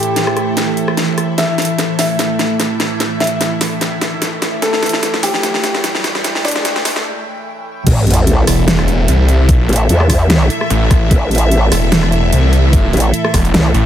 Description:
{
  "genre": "heavy wobble dubstep",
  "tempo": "148 BPM",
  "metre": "4/4",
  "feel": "swing 54% on 16ths, half-time",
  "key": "A minor",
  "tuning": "A4 = 443 Hz",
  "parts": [
    { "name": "dark baby grand piano", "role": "melody", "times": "0.0-7.1 s", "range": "D4 to E5", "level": "-20 LUFS", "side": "left 1 dB", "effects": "digital delay" },
    { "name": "evolving wavetable pad", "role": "sustained chords", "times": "0.0-13.9 s", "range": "A2 to G5", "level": "-20 LUFS", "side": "right 2 dB", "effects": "chorus, built-in reverb, phaser, sidechain pumping" },
    { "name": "dubstep drum kit", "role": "drums", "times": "0.0-13.8 s", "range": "crash cymbal, hi-hat, rim click, snare drum", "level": "-17 LUFS", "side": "equal", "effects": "overdrive, high-pass filter on snare, high-pass filter on hats, high-pass filter on cymbals, high-pass filter on room" },
    { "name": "rich studio string section", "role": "texture", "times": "0.0-13.9 s", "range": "E4 to E5", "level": "-24 LUFS", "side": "left 1 dB", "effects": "sidechain pumping" },
    { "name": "riser and sub drop", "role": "sound effects", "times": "3.5-9.5 s", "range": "none", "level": "-23 LUFS", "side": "equal", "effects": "none" },
    { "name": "growl bass", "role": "bass", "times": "7.9-13.7 s", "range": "A1 to E2", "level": "-12 LUFS", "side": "equal", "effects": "chorus, overdrive" },
    { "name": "electronic kick drum", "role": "drums", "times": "7.9-13.4 s", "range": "none", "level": "-13 LUFS", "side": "equal", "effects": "overdrive" },
    { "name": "snarling distorted saw bass", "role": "bass", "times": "8.5-13.8 s", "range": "E1 to C2", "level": "-12 LUFS", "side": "equal", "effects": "distortion, overdrive" }
  ],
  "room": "light reverb, digital ambience",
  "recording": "high-pass filter",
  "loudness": "-11 LUFS",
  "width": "side -10 dB against mid",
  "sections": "0.0-7.9 A section; 7.9-13.9 B section",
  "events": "build-up 0.0-7.9; drum fill 0.0-7.1; filter sweep 0.0-7.9; riser 3.5-7.1; break 7.1-7.9; drop 7.9-13.9; impact 7.9-9.5",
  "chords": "0.0 A5"
}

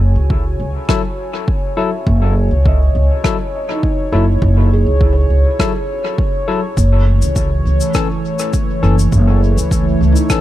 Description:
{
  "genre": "ambient dub",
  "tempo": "102 BPM",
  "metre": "4/4",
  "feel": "straight",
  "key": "F# dorian",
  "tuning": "A4 = 440 Hz",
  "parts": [
    { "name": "warm analog pad", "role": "sustained chords", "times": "0.0-10.4 s", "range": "E3 to G#5", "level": "-21 LUFS", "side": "equal", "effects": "chorus" },
    { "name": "felt-muted upright piano", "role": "arpeggios", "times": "0.0-10.4 s", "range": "D#4 to E5", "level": "-25 LUFS", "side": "right 5 dB", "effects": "analog delay" },
    { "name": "upright bass", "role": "bass", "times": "0.0-10.1 s", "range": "F#1 to C#2", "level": "-12 LUFS", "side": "equal", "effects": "none" },
    { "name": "electronic kick drum", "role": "drums", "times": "0.3-10.4 s", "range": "none", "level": "-18 LUFS", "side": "equal", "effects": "overdrive" },
    { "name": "barky tine electric piano", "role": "stabs", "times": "0.9-10.4 s", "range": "E3 to A4", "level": "-22 LUFS", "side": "left 7 dB", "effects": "auto-pan, dub echo" },
    { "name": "rim click and shaker", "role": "drums", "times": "0.9-10.4 s", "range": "none", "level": "-26 LUFS", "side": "equal", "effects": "dub echo" }
  ],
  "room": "small room ambience",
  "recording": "echo-heavy mix",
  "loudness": "-12 LUFS",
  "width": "side -14 dB against mid",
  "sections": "0.0-10.4 A section",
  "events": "none",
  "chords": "0.0 F#7(no3); 6.8 F#m7"
}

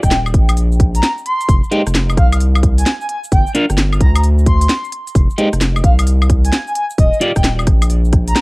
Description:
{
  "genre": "UK garage, two-step garage",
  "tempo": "131 BPM",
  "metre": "4/4",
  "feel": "swing 65% on 16ths",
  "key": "F dorian",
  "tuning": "A4 = 440 Hz",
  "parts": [
    { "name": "breathy flute-like synth lead", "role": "melody", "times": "0.0-8.4 s", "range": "Eb5 to C6", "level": "-21 LUFS", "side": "equal", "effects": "analog chorus, cassette tape, analog delay" },
    { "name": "saturated sub bass", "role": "bass", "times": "0.0-8.3 s", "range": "Eb1 to D2", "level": "-14 LUFS", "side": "equal", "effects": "none" },
    { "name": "electronic kick drum", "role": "drums", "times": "0.0-8.2 s", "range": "none", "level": "-13 LUFS", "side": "equal", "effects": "cassette tape" },
    { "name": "house drum kit", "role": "drums", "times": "0.0-8.4 s", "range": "hi-hat, rim click, shaker, snare drum, woodblock", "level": "-19 LUFS", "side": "equal", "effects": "cassette tape" },
    { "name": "electric guitar at the edge of break-up", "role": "stabs", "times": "1.7-7.3 s", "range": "Ab3 to D5", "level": "-18 LUFS", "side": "equal", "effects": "phaser, cassette tape, analog delay" }
  ],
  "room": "little or no reverb",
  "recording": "home recording on cassette",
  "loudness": "-11 LUFS",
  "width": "side -24 dB against mid",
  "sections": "0.0-8.4 A section",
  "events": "drum fill 8.1",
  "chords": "0.0 Eb5; 1.5 F5; 3.1 G5; 5.2 F5; 7.0 Eb5"
}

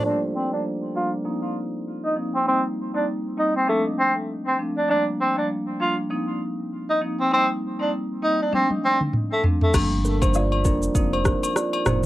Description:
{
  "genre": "afrobeats",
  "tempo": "99 BPM",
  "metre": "4/4",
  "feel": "swing 58% on 16ths",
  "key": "G minor",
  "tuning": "A4 = 442 Hz",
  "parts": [
    { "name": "warm tenor saxophone", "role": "melody", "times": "0.0-9.7 s", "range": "A3 to F4", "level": "-22 LUFS", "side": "equal", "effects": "low-pass filter, cassette tape, analog delay" },
    { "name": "marimba with medium mallets", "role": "accompaniment", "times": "0.0-12.1 s", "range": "F3 to Eb4", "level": "-27 LUFS", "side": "equal", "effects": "low-pass filter" },
    { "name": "afro-pop drum kit", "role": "drums", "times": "8.5-12.1 s", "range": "crash cymbal, kick drum, rim click, shaker, toms", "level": "-23 LUFS", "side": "equal", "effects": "cassette tape" },
    { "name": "warm sub bass", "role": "bass", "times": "9.7-12.1 s", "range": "F1 to G1", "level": "-25 LUFS", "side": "equal", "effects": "none" },
    { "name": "agogo bells and woodblock", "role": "percussion", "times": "9.7-11.9 s", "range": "none", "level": "-29 LUFS", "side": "left 7 dB", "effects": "none" },
    { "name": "kalimba", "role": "riff", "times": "10.0-12.0 s", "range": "D4 to D5", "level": "-29 LUFS", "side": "right 3 dB", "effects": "analog delay" }
  ],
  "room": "light reverb",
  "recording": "home recording on cassette",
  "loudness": "-20 LUFS",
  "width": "side -15 dB against mid",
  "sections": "0.0-9.7 A section; 9.7-12.1 B section",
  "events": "filter sweep 0.0-9.7; drum fill 8.5-9.7",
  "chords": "0.0 Gm7; 1.3 F7sus4; 2.5 Eb6; 3.7 Dm7; 4.9 Gm7; 6.1 F7sus4; 7.3 Eb6; 8.5 Dm7; 9.7 Gm7; 11.0 F7sus4"
}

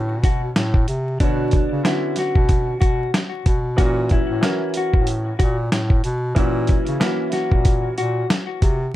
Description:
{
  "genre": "hip hop, boom-bap hip-hop",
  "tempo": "93 BPM",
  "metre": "4/4",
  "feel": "swing 57% on 16ths",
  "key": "unclear",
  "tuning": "A4 = 442 Hz",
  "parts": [
    { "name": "dark grand piano", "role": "accompaniment", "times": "0.0-8.8 s", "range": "D3 to C#5", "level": "-27 LUFS", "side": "right 2 dB", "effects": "cassette tape, high-pass filter, low-pass filter" },
    { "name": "warm bass clarinet", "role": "bass", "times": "0.0-8.9 s", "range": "A2 to C#3", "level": "-23 LUFS", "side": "equal", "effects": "none" },
    { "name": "mellow electric guitar", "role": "melody", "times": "0.2-8.3 s", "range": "D4 to F#4", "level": "-25 LUFS", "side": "left 2 dB", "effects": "high-pass filter, low-pass filter, ping-pong delay" },
    { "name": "dusty soul sampler-style drum kit", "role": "drums", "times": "0.2-8.8 s", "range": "hi-hat, kick drum, snare drum", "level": "-18 LUFS", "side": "equal", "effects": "none" }
  ],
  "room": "light reverb",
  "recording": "dark, warm production, vinyl crackle",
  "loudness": "-17 LUFS",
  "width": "side -14 dB against mid",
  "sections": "0.0-9.0 A section",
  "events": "none",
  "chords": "0.0 Bmadd9; 3.8 F#7"
}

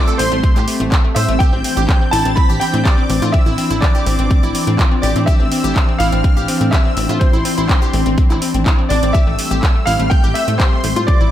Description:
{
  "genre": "progressive house",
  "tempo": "124 BPM",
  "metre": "4/4",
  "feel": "straight",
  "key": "unclear",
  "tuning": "A4 = 439 Hz",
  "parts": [
    { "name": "soft supersaw", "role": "second line", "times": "0.0-11.3 s", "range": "C6 to B6", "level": "-26 LUFS", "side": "left 1 dB", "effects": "sidechain pumping, analog delay" },
    { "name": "airy breathy pad", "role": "sustained chords", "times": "0.0-11.3 s", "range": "E3 to D4", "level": "-22 LUFS", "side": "equal", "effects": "chorus, vintage 12-bit sampler grit, sidechain pumping" },
    { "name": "glassy wavetable pluck", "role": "arpeggios", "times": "0.1-11.3 s", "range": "A3 to C5", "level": "-22 LUFS", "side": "left 3 dB", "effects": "chorus, sidechain pumping, analog delay" },
    { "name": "warm baby grand piano", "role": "melody", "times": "0.2-11.3 s", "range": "C5 to B5", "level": "-22 LUFS", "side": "equal", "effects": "ensemble chorus, sidechain pumping, analog delay" },
    { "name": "plucky analog bass", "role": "bass", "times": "0.2-11.3 s", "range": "A1 to A2", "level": "-19 LUFS", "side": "equal", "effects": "sidechain pumping" },
    { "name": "pop drum kit", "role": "drums", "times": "0.2-11.2 s", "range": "handclaps, hi-hat", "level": "-23 LUFS", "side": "equal", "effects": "small room reverb" },
    { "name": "electronic kick drum", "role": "drums", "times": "0.4-11.2 s", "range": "none", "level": "-14 LUFS", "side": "equal", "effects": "small room reverb" }
  ],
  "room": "light reverb, digital ambience",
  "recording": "none",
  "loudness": "-12 LUFS",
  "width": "side -12 dB against mid",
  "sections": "0.0-11.3 A section",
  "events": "none",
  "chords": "0.0 Am7; 1.4 Cadd9/A; 9.1 Am7"
}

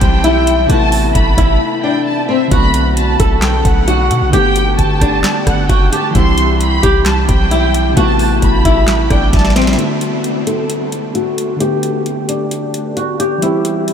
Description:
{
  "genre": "hip hop, trap",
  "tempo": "132 BPM",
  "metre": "4/4",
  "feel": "half-time",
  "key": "B phrygian",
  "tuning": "A4 = 440 Hz",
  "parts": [
    { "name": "flamenco guitar", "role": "melody", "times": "0.0-13.9 s", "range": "C4 to A4", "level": "-16 LUFS", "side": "left 1 dB", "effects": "lush chorus, low-pass filter, analog delay" },
    { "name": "warm studio violin section", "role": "second line", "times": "0.0-9.8 s", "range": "E5 to C6", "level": "-20 LUFS", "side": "right 2 dB", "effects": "analog delay" },
    { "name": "soft electric-piano-like synth keys", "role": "accompaniment", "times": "0.0-13.9 s", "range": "C3 to G4", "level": "-20 LUFS", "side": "left 1 dB", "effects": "chorus, low-pass filter" },
    { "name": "hard-hitting 808-style bass", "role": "bass", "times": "0.0-9.8 s", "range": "F#1 to B2", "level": "-15 LUFS", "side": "equal", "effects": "none" },
    { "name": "booming analog drum machine", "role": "drums", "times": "0.0-13.9 s", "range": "handclaps, hi-hat, kick drum, rim click, snare drum", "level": "-18 LUFS", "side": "equal", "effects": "none" }
  ],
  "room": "moderate huge ambient reverb, RT60 8.4 s",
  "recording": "dreamy mix soaked in reverb",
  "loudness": "-11 LUFS",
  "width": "side -8 dB against mid",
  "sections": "0.0-9.8 A section; 9.8-13.9 B section",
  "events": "break 1.6-2.5; drum fill 9.3-9.8; filter sweep 9.8-13.9",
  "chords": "0.0 C; 0.7 Amadd9; 2.5 Bm7; 4.3 Gadd9; 6.2 C; 8.0 Amadd9; 9.8 Bm7; 11.6 Gadd9; 13.4 C"
}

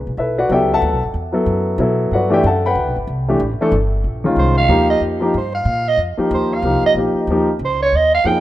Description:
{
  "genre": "jazz",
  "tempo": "186 BPM",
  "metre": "3/4",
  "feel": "swing 61% on 8ths",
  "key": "F minor from 4.0 s",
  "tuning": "A4 = 440 Hz",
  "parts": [
    { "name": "warm grand piano", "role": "accompaniment", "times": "0.0-8.4 s", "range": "Eb3 to B5", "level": "-17 LUFS", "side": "left 1 dB", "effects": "none" },
    { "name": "upright bass", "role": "bass", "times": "0.0-8.4 s", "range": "G1 to B2", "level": "-21 LUFS", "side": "equal", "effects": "none" },
    { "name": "growling soprano saxophone", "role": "melody", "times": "4.4-8.4 s", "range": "C5 to G5", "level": "-17 LUFS", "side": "right 3 dB", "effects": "none" }
  ],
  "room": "light reverb, studio reverb",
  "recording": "rough home demo mix",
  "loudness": "-14 LUFS",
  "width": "side -14 dB against mid",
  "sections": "0.0-4.0 A section; 4.0-8.4 A section",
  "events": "soprano saxophone solo 4.0-8.4",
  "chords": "0.2 Em11; 3.1 Cadd9; 4.0 F9sus4"
}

